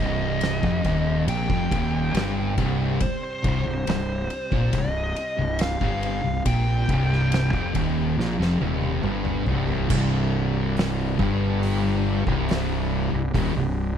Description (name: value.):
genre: stoner and doom metal.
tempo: 70 BPM.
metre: 4/4.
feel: straight.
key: C minor.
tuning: A4 = 440 Hz.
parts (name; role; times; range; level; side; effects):
fuzz lead guitar; melody; 0.0-9.0 s; C5 to G5; -30 LUFS; equal; wah, distortion, slapback echo.
bright tonewheel organ; sustained chords; 0.0-14.0 s; C3 to D4; -37 LUFS; right 1 dB; none.
thick fuzz guitar; riff; 0.0-13.9 s; C2 to Bb2; -28 LUFS; left 8 dB; distortion.
thick fuzz guitar; riff; 0.0-13.9 s; C2 to Bb2; -29 LUFS; right 8 dB; distortion.
thick fuzz guitar; riff; 0.0-13.9 s; C2 to Bb2; -29 LUFS; right 1 dB; distortion.
fuzz fingered electric bass; bass; 0.0-14.0 s; C1 to Bb1; -28 LUFS; equal; overdrive, tube saturation.
oversized low-tuned drum kit; drums; 0.4-13.5 s; crash cymbal, hi-hat, kick drum, ride cymbal, snare drum, toms; -29 LUFS; equal; none.
room: little or no reverb.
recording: dry, close 1970s-style studio recording.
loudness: -21 LUFS.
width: side -9 dB against mid.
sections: 0.0-9.9 A section; 9.9-14.0 B section.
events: drum fill 8.2-9.9.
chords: 0.0 Cm.